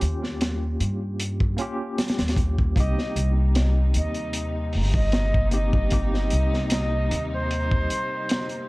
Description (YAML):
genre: trip hop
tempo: 76 BPM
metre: 4/4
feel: straight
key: C phrygian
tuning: A4 = 440 Hz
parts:
  - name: tine electric piano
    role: accompaniment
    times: 0.0-8.7 s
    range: Bb3 to G4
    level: -32 LUFS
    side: equal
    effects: medium stereo tremolo, tape echo
  - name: upright bass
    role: bass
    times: 0.0-7.9 s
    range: G1 to G2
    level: -24 LUFS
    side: equal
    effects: none
  - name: crunchy breakbeat drum kit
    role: drums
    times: 0.0-8.7 s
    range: hi-hat, kick drum, snare drum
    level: -25 LUFS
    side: equal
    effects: none
  - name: reedy silver concert flute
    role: melody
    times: 2.8-8.7 s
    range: C5 to Eb5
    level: -30 LUFS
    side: equal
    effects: vintage 12-bit sampler grit, dub echo
  - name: warm chamber string section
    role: sustained chords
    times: 2.8-8.7 s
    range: C3 to Eb4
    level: -34 LUFS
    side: left 1 dB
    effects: vintage 12-bit sampler grit
room: studio reverb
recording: worn, warbling old tape, cassette tape, warbly pitch drift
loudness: -21 LUFS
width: side -22 dB against mid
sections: 0.0-8.7 A section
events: none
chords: 0.0 Eb7; 2.8 Cm7